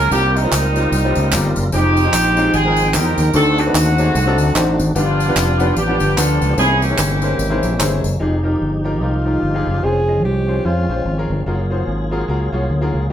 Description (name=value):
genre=uptempo gospel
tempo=148 BPM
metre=4/4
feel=swing 60% on 8ths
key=F minor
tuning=A4 = 439 Hz
part: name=warm horn section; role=melody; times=0.0-8.0 s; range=G3 to Bb4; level=-18 LUFS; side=right 1 dB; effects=none
part: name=tonewheel organ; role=sustained chords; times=0.0-13.1 s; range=C3 to G5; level=-24 LUFS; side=right 1 dB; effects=slow rotary speaker, overdrive, chorus vibrato
part: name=fingered electric bass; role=bass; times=0.0-13.1 s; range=F1 to F2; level=-18 LUFS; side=equal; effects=none
part: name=bright upright piano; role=accompaniment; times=0.1-13.1 s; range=G2 to Eb5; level=-22 LUFS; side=left 2 dB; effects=none
part: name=tambourine and handclaps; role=percussion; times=0.1-8.1 s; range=none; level=-24 LUFS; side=right 1 dB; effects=none
part: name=breathy tenor saxophone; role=melody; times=9.0-11.3 s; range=F4 to Ab4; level=-21 LUFS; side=equal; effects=none
room=wet studio reverb, RT60 0.6 s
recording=band playing live in one room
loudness=-14 LUFS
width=side -10 dB against mid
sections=0.0-8.2 A section; 8.2-13.1 B section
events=none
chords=0.1 C7sus4; 1.7 Fm9; 3.3 D7b9; 5.0 G7; 6.6 C7b9b13; 8.2 Fm9; 9.8 Dbmaj7/F; 11.5 Gbmaj9